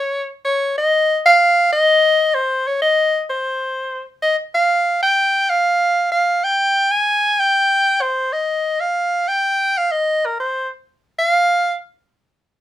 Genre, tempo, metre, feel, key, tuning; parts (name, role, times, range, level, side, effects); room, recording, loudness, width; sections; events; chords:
jazz; 127 BPM; 4/4; swing 69% on 8ths; F minor; A4 = 440 Hz
clear soprano saxophone; solo; 0.0-11.8 s; Bb4 to Ab5; -15 LUFS; equal
moderate studio ambience, RT60 0.4 s; -15 LUFS; side -12 dB against mid
0.0-12.3 A section